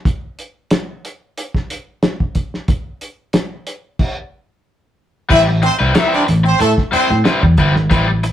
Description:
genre	funk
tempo	92 BPM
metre	4/4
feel	straight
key	A minor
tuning	A4 = 439 Hz
part	cloth-damped thuddy drum kit	drums	0.1-8.3 s	crash cymbal, hi-hat, kick drum, snare drum	-18 LUFS	equal	none
part	clear horn section	second line	5.3-7.2 s	A3 to E5	-15 LUFS	equal	none
part	overdriven semi-hollow guitar	accompaniment	5.3-8.3 s	G3 to C5	-18 LUFS	left 2 dB	none
part	vintage muted fingered electric bass	bass	5.3-8.3 s	G1 to A2	-15 LUFS	equal	none
room	moderate studio reverb, RT60 0.6 s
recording	rough rehearsal-room recording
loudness	-13 LUFS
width	side -11 dB against mid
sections	0.0-5.3 A section; 5.3-8.3 B section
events	stop 4.0-5.3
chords	0.0 N.C.; 5.3 Am9

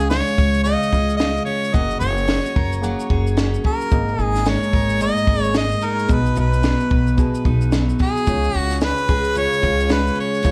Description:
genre	acoustic pop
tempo	110 BPM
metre	4/4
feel	swing 60% on 16ths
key	unclear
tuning	A4 = 441 Hz
part	clear harmonica	melody	0.0-10.5 s	G#4 to D#5	-25 LUFS	equal	plate reverb, tape echo
part	picked steel-string acoustic guitar	accompaniment	0.0-10.5 s	G#2 to C#5	-26 LUFS	equal	none
part	reed electric piano	accompaniment	0.0-10.5 s	G#3 to F#5	-32 LUFS	equal	none
part	upright bass	bass	0.0-10.5 s	F#1 to C#2	-24 LUFS	equal	none
part	compact cocktail drum kit	drums	0.0-10.5 s	kick drum, shaker, snare drum	-23 LUFS	equal	none
room	light reverb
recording	worn, warbling old tape, cassette tape, warbly pitch drift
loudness	-19 LUFS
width	mono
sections	0.0-10.5 A section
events	none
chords	0.0 C#; 1.7 F#add9; 3.9 G#sus2; 6.1 B; 8.3 C#

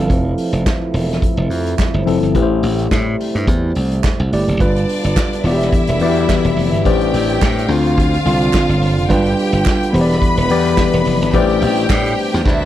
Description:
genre	disco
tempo	107 BPM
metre	4/4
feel	swing 56% on 16ths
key	unclear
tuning	A4 = 441 Hz
part	tine electric piano	accompaniment	0.0-12.7 s	D3 to F5	-18 LUFS	moving between left 10 dB and right 2 dB	auto-pan
part	dark French horn section	sustained chords	0.0-12.7 s	B2 to F4	-24 LUFS	right 4 dB	none
part	glassy slap bass	bass	0.0-12.7 s	E1 to A2	-18 LUFS	equal	none
part	vintage drum kit	drums	0.1-12.6 s	hi-hat, kick drum, snare drum	-20 LUFS	equal	none
part	group handclap	percussion	0.7-12.0 s	none	-29 LUFS	right 13 dB	none
part	clear studio string section	second line	4.6-12.7 s	D4 to B5	-21 LUFS	right 1 dB	none
room	little or no reverb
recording	none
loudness	-13 LUFS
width	side -13 dB against mid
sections	0.0-4.6 A section; 4.6-12.7 B section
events	drum fill 12.5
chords	0.0 Fmaj7; 2.3 Am7; 4.6 G7; 5.4 Em7; 6.9 Am11; 7.7 Dm7; 9.1 G7; 9.9 Em7; 11.3 Am11

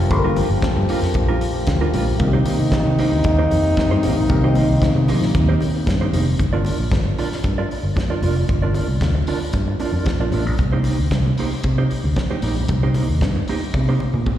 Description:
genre	disco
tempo	114 BPM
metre	4/4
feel	straight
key	G minor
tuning	A4 = 440 Hz
part	mellow electric guitar	accompaniment	0.0-14.3 s	G3 to D5	-26 LUFS	right 6 dB	tremolo, slapback echo
part	tine electric piano	accompaniment	0.0-6.4 s	Eb3 to Bb4	-24 LUFS	left 5 dB	analog chorus, slapback echo
part	warm French horn section	sustained chords	0.0-6.4 s	C3 to G4	-22 LUFS	left 2 dB	none
part	fingered electric bass	bass	0.0-14.2 s	F1 to C3	-19 LUFS	equal	none
part	warm soul drum kit	drums	0.1-14.4 s	hi-hat, kick drum, snare drum, toms	-24 LUFS	equal	none
part	congas	percussion	0.1-14.4 s	none	-30 LUFS	left 2 dB	slapback echo
room	light reverb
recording	live gig heard through the venue's PA, recital hall reverb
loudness	-16 LUFS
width	side -11 dB against mid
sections	0.0-6.4 A section; 6.4-14.4 B section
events	drum fill 13.7-14.4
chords	0.0 Gm7; 2.2 Cm7; 6.4 Gm7; 10.6 Cm7

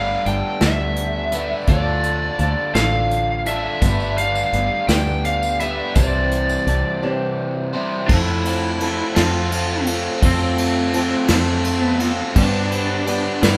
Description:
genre	folk rock and heartland rock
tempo	56 BPM (dotted quarters)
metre	6/8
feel	straight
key	unclear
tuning	A4 = 440 Hz
part	lead guitar through a small cranked amp	melody	0.0-13.6 s	C4 to G5	-25 LUFS	equal	overdrive
part	picked swing-style acoustic guitar	accompaniment	0.0-13.6 s	G2 to A4	-30 LUFS	equal	none
part	overdriven electric guitar	riff	0.0-13.6 s	C3 to C5	-27 LUFS	equal	none
part	fingered electric bass	bass	0.0-13.6 s	G1 to G2	-25 LUFS	equal	none
part	soft brush drum kit	drums	0.3-13.6 s	crash cymbal, hi-hat, kick drum, ride cymbal, snare drum	-24 LUFS	equal	none
part	tambourine	percussion	3.8-6.8 s	none	-39 LUFS	equal	none
room	moderate large studio reverb, RT60 1.2 s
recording	band playing live in one room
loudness	-19 LUFS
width	mono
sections	0.0-8.1 A section; 8.1-13.6 B section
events	break 7.0-8.1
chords	0.0 Gadd9; 1.7 Dm; 3.8 Gadd9; 6.0 Cadd9; 8.1 F; 12.4 G

